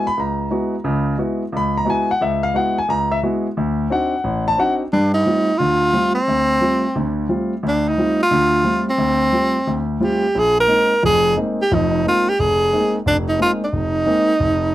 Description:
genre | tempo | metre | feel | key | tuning
jazz | 177 BPM | 4/4 | swing 65% on 8ths | G phrygian from 4.9 s | A4 = 445 Hz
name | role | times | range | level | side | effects
warm concert grand piano | accompaniment | 0.0-14.7 s | F1 to Cb6 | -19 LUFS | equal | none
breathy tenor saxophone | melody | 4.9-14.7 s | C4 to Bb4 | -16 LUFS | right 1 dB | none
room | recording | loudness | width
little or no reverb | dry, close 1970s-style studio recording | -16 LUFS | side -14 dB against mid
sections
0.0-4.9 A section; 4.9-14.7 B section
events
none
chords
0.0 Gb9sus4; 3.6 D7b9; 4.9 G9sus4; 10.3 Bb9sus4

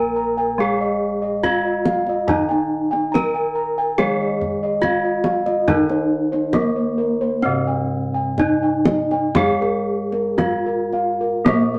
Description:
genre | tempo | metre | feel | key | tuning
Javanese gamelan | 54-71 BPM | 4/4 | straight | Bb slendro | A4 = 440 Hz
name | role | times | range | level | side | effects
gamelan-type bronze metallophone | melody | 0.0-11.8 s | Bb3 to Bb4 | -23 LUFS | equal | none
gamelan-type bronze metallophone | accompaniment | 0.0-11.8 s | C3+40c to Bb3 | -30 LUFS | equal | none
gamelan-type bossed gongs | arpeggios | 0.0-11.8 s | Bb4 to Bb5 | -25 LUFS | equal | none
gamelan-type bossed gongs | bass | 0.0-11.8 s | Bb1 to Bb4 | -34 LUFS | equal | none
kendang | percussion | 1.4-11.8 s | none | -25 LUFS | equal | none
room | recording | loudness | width
wet studio reverb, RT60 0.7 s | none | -20 LUFS | mono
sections
0.0-11.8 A section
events
none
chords
none

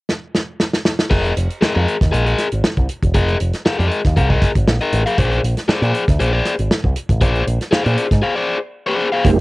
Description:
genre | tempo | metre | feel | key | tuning
funk | 118 BPM | 4/4 | straight | F dorian | A4 = 440 Hz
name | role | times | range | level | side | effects
warm soul drum kit | drums | 0.1-9.4 s | crash cymbal, hi-hat, kick drum, snare drum | -17 LUFS | equal | cassette tape
crunchy overdriven guitar | accompaniment | 1.1-9.3 s | Ab4 to F5 | -19 LUFS | left 2 dB | cassette tape
picked electric bass with an envelope filter | bass | 1.1-9.4 s | E1 to Bb2 | -18 LUFS | equal | none
mellow tonewheel organ | stabs | 9.2-9.4 s | Ab3 to G4 | -14 LUFS | right 4 dB | chorus vibrato, fast rotary speaker, cassette tape
room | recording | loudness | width
small room ambience | home recording on cassette | -15 LUFS | side -21 dB against mid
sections
0.0-1.1 A section; 1.1-9.2 B section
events
drum fill 0.1-1.1; break 8.2-9.2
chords
0.0 N.C.; 1.1 Fm7; 5.2 Bb9

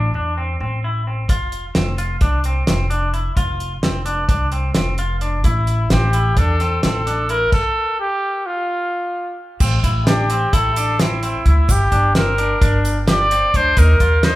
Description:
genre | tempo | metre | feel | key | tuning
progressive instrumental, band music in an uneven meter | 260 BPM (eighths) | 9/8 | straight | unclear | A4 = 445 Hz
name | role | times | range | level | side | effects
clean electric guitar | arpeggios | 0.0-14.4 s | C4 to G4 | -24 LUFS | left 1 dB | none
upright bass | bass | 0.0-14.4 s | F1 to E2 | -19 LUFS | equal | none
damped 70s drum kit | drums | 1.3-14.3 s | crash cymbal, hi-hat, kick drum, snare drum | -18 LUFS | equal | none
warm trumpet | melody | 5.4-14.4 s | E4 to D5 | -19 LUFS | equal | tape echo
tube shaker | percussion | 9.6-14.1 s | none | -33 LUFS | right 3 dB | none
room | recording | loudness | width
moderate large studio reverb, RT60 0.8 s | band playing live in one room | -15 LUFS | side -16 dB against mid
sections
0.0-9.6 A section; 9.6-14.4 B section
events
stop 7.5-9.6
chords
0.0 Am; 1.3 F5; 5.5 Am; 7.5 N.C.; 9.6 Am7; 11.7 Gm; 13.8 Eb5

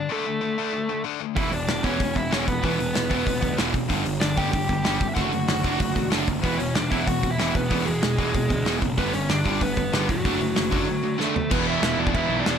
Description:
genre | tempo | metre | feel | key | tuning
punk rock | 189 BPM | 4/4 | straight | unclear | A4 = 440 Hz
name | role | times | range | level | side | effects
biting lead guitar | melody | 0.0-12.6 s | F#3 to G5 | -27 LUFS | equal | overdrive
tight distorted guitar | riff | 0.0-12.6 s | E2 to D4 | -29 LUFS | left 13 dB | distortion
overdriven semi-hollow guitar | riff | 1.4-12.6 s | E2 to D4 | -28 LUFS | right 12 dB | none
fuzz picked electric bass | bass | 1.4-12.6 s | E1 to D2 | -30 LUFS | equal | overdrive
loose indie drum kit | drums | 1.4-12.5 s | crash cymbal, hi-hat, kick drum, snare drum, toms | -26 LUFS | equal | none
distorted electric guitar | riff | 11.5-12.6 s | E3 to E4 | -28 LUFS | right 1 dB | distortion
room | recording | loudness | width
little or no reverb | none | -21 LUFS | side -8 dB against mid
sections
0.0-11.5 A section; 11.5-12.6 B section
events
drum fill 11.2-11.5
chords
0.1 D5; 1.4 E5; 3.9 G5; 5.2 D/F#; 6.4 E; 9.0 G; 10.2 D/F#; 11.5 E

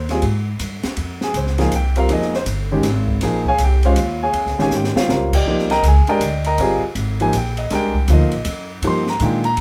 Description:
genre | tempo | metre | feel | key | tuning
modal jazz | 160 BPM | 3/4 | swing 64% on 8ths | C phrygian | A4 = 440 Hz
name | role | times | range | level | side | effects
warm grand piano | accompaniment | 0.0-9.6 s | Eb3 to C6 | -21 LUFS | equal | none
upright bass | bass | 0.0-9.6 s | F1 to Bb2 | -22 LUFS | equal | none
open jazz drum kit | drums | 0.1-9.6 s | crash cymbal, hi-hat, kick drum, ride cymbal, snare drum | -28 LUFS | equal | none
room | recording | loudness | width
moderate studio reverb, RT60 0.5 s | none | -18 LUFS | mono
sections
0.0-9.6 A section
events
drum fill 4.7-5.1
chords
0.0 Cm; 1.0 Bbm9; 5.5 Cm9

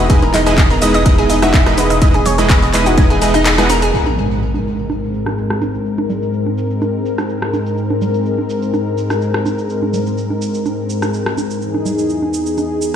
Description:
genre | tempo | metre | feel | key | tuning
progressive house | 125 BPM | 4/4 | straight | unclear | A4 = 440 Hz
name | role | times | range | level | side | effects
warm analog pad | sustained chords | 0.0-13.0 s | E2 to D#5 | -18 LUFS | left 1 dB | chorus, sidechain pumping
analog pluck | arpeggios | 0.0-3.9 s | D#4 to G#5 | -18 LUFS | equal | chorus, sidechain pumping, ping-pong delay
supersaw stab | stabs | 0.0-3.7 s | G#3 to Gb5 | -17 LUFS | right 2 dB | sidechain pumping, low-pass filter, ping-pong delay
round analog bass | bass | 0.0-3.9 s | E1 | -18 LUFS | equal | sidechain pumping
electronic kick drum | drums | 0.1-3.1 s | none | -11 LUFS | equal | none
house drum kit | drums | 0.1-12.9 s | cabasa, handclaps, hi-hat, rim click | -21 LUFS | equal | low-pass filter on hats, low-pass filter on perc, low-pass filter on snare, low-pass filter on room
congas | percussion | 0.2-12.7 s | none | -24 LUFS | right 4 dB | sidechain pumping on perc
impact | sound effects | 3.9-5.9 s | none | -22 LUFS | equal | none
room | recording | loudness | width
moderate lush hall reverb, RT60 2.0 s | played on a big sound system in a bare room, stone room reverb | -13 LUFS | side -9 dB against mid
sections
0.0-3.9 A section; 3.9-13.0 B section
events
kick drops out 3.5-3.9; band accent 3.5; impact 3.9-5.9; filter sweep on drum 3.9-13.0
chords
0.0 Emaj7; 3.9 Abadd9; 11.6 Emaj7

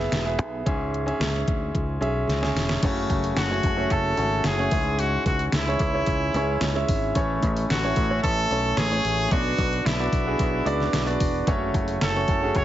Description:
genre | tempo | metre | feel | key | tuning
piano-driven pop | 111 BPM | 4/4 | straight | F# minor | A4 = 441 Hz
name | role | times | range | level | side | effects
bright concert grand piano | accompaniment | 0.0-12.6 s | G#2 to E5 | -26 LUFS | right 1 dB | none
fingered electric bass | bass | 0.0-12.6 s | E1 to D2 | -28 LUFS | equal | none
pop drum kit | drums | 0.1-12.6 s | crash cymbal, hi-hat, kick drum, snare drum | -26 LUFS | equal | overdrive
bright trumpet | melody | 3.4-12.6 s | E4 to C#5 | -26 LUFS | equal | none
room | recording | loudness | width
light reverb, digital ambience | heavily compressed radio sound, multiband compression, nothing above 7.8 kHz | -21 LUFS | side -12 dB against mid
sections
0.0-2.8 A section; 2.8-12.6 B section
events
drum fill 2.3-2.8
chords
0.0 E; 0.7 C#m; 2.8 F#m; 4.7 C#m; 7.2 A; 9.3 Bm; 11.5 F#m

